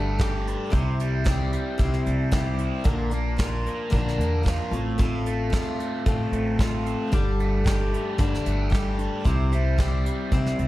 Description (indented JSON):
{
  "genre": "folk rock and heartland rock",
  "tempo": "113 BPM",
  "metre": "4/4",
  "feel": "straight",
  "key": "unclear",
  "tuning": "A4 = 440 Hz",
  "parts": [
    { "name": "picked steel-string acoustic guitar", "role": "accompaniment", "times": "0.0-10.7 s", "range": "G2 to C5", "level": "-28 LUFS", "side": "left 2 dB", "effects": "none" },
    { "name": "biting overdriven guitar", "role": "riff", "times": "0.0-10.7 s", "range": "A2 to G4", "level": "-31 LUFS", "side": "right 1 dB", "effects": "phaser" },
    { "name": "upright bass", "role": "bass", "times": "0.0-10.7 s", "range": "G1 to E2", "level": "-26 LUFS", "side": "equal", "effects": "none" },
    { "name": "soft brush drum kit", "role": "drums", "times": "0.2-10.7 s", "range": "hi-hat, kick drum, snare drum", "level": "-25 LUFS", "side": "equal", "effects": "none" }
  ],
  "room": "light reverb, small room ambience",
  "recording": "none",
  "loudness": "-22 LUFS",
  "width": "side -16 dB against mid",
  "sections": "0.0-10.7 A section",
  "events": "none",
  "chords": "0.0 Gsus2; 0.7 C; 2.9 Bb; 4.7 F/A; 7.1 Gsus2; 9.3 C",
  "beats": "0.19 | 0.73 1.26 1.80 2.33 | 2.86 3.40 3.93 4.46 | 5.00 5.53 6.06 6.59 | 7.12 7.66 8.19 8.72 | 9.25 9.79 10.32"
}